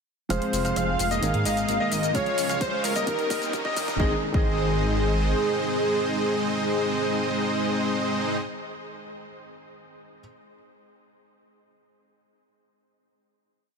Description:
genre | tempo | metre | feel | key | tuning
EDM, festival progressive house | 130 BPM | 4/4 | straight | Ab major | A4 = 440 Hz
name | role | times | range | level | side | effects
airy dreamy lead | melody | 0.3-8.4 s | Ab4 to F5 | -28 LUFS | equal | chorus, cassette tape, tape echo
felt-muted upright piano | accompaniment | 0.3-10.2 s | Eb3 to Ab4 | -34 LUFS | right 3 dB | sidechain pumping, tape echo
warm baby grand piano | arpeggios | 0.3-8.4 s | Eb5 to F5 | -34 LUFS | equal | sidechain pumping, tape echo
dense compressed supersaw | riff | 0.3-8.4 s | G3 to F5 | -28 LUFS | equal | sidechain pumping, low-pass filter, tape echo
wide detuned saw bass | bass | 0.3-5.3 s | Eb1 to Ab2 | -29 LUFS | equal | chorus, sidechain pumping
electronic hi-hat and shaker | drums | 0.3-4.0 s | none | -33 LUFS | left 2 dB | studio reverb
riser | sound effects | 2.3-4.0 s | none | -38 LUFS | left 1 dB | none
electronic kick drum | drums | 2.1-4.5 s | none | -27 LUFS | equal | studio reverb
room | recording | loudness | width
light reverb | dense, heavily limited modern master, high-pass filter | -22 LUFS | side -5 dB against mid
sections
0.3-4.0 build; 4.0-7.7 final chord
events
build-up 0.3-4.0; filter sweep on supersaw synth 0.3-4.0; drum fill 2.1-4.0; riser 2.3-4.0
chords
0.3 Fm; 1.2 Absus2; 2.1 Db; 3.1 Eb; 4.0 Ab

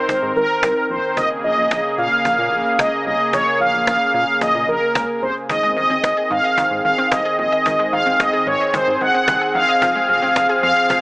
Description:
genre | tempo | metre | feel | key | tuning
synth-pop | 111 BPM | 4/4 | straight | Bb minor | A4 = 443 Hz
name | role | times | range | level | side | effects
mellow synth brass | melody | 0.0-11.0 s | Bb4 to Gb5 | -16 LUFS | equal | chorus
warm analog pad | sustained chords | 0.0-11.0 s | Db3 to Bb4 | -23 LUFS | equal | wide subtle chorus
rubbery square bass | bass | 0.1-11.0 s | F1 to Bb2 | -30 LUFS | equal | none
cajon | drums | 0.1-11.0 s | none | -21 LUFS | equal | none
analog pluck | arpeggios | 5.5-11.0 s | Eb3 to F5 | -27 LUFS | left 1 dB | chorus, analog delay
room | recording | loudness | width
light reverb | small speaker sound | -15 LUFS | side -25 dB against mid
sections
0.0-11.0 A section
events
none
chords
0.0 Ab; 1.2 Bbm7; 5.5 Ab; 9.8 Fm

